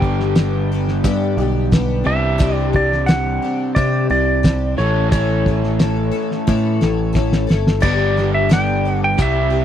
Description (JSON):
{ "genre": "folk rock and heartland rock", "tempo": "88 BPM", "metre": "4/4", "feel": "straight", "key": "unclear", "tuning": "A4 = 440 Hz", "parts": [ { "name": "clean lap steel guitar", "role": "melody", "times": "0.0-9.6 s", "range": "C#5 to G5", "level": "-21 LUFS", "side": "right 1 dB", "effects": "none" }, { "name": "picked twelve-string acoustic guitar", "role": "accompaniment", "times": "0.0-9.6 s", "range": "G2 to A4", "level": "-23 LUFS", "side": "left 8 dB", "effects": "analog chorus" }, { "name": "crunchy overdriven guitar", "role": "riff", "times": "0.0-9.6 s", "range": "G2 to A4", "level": "-23 LUFS", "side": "right 2 dB", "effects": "none" }, { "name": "picked electric bass", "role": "bass", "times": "0.0-9.6 s", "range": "G1 to C3", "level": "-19 LUFS", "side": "equal", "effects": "none" }, { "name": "cloth-damped thuddy drum kit", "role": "drums", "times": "0.0-9.3 s", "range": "crash cymbal, hi-hat, kick drum, snare drum", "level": "-17 LUFS", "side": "equal", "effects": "none" } ], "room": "little or no reverb", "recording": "dry, close 1970s-style studio recording", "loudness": "-15 LUFS", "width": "side -10 dB against mid", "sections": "0.0-7.8 A section; 7.8-9.6 B section", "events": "drum fill 6.5-7.8", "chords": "0.0 G; 2.1 Csus2; 4.8 A; 7.8 G" }